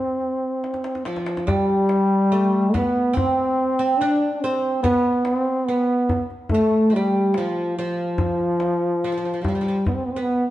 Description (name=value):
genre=Persian modal ensemble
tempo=71 BPM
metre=4/4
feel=straight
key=unclear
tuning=A4 = 440 Hz
part: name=mellow trombone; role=melody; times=0.0-10.5 s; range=F3 to D4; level=-20 LUFS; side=equal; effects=none
part: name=tombak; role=percussion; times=0.2-10.1 s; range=none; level=-27 LUFS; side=left 1 dB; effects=none
part: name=oud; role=second line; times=1.1-10.4 s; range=F3 to D4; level=-26 LUFS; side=right 2 dB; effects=none
room=wet stone room reverb, RT60 1.2 s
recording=band playing live in one room, nothing above 10.5 kHz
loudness=-19 LUFS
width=side -14 dB against mid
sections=0.0-1.5 A section; 1.5-10.5 B section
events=drum fill 0.6-1.5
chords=none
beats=0.62 | 1.46 2.31 3.15 3.99 | 4.83 5.67 6.51 7.35 | 8.19 9.03 9.87